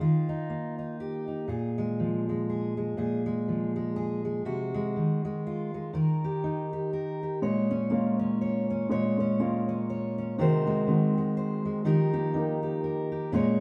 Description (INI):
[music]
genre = acoustic folk duo or small band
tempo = 122 BPM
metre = 3/4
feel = swing 57% on 8ths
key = Bb minor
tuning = A4 = 440 Hz
[part]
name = fingerpicked steel-string acoustic guitar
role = accompaniment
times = 0.0-13.6 s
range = Bb2 to Db5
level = -30 LUFS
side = equal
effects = none
[part]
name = dark upright piano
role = arpeggios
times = 7.4-13.6 s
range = Eb3 to G4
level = -31 LUFS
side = equal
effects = none
[sound]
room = wet stone room reverb, RT60 1.2 s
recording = band playing live in one room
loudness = -29 LUFS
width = mono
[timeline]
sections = 0.0-1.5 A section; 1.5-13.3 A section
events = none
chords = 0.0 Ebadd9; 1.5 Bb5; 4.5 Ab7/C; 5.9 Eb; 7.4 Bbm7; 10.4 Ab7/C; 11.9 Ebadd9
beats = | 0.01 0.51 1.00 | 1.50 1.99 2.48 | 2.98 3.47 3.96 | 4.46 4.95 5.44 | 5.94 6.43 6.92 | 7.42 7.91 8.40 | 8.89 9.39 9.88 | 10.37 10.87 11.36 | 11.86 12.35 12.84 | 13.34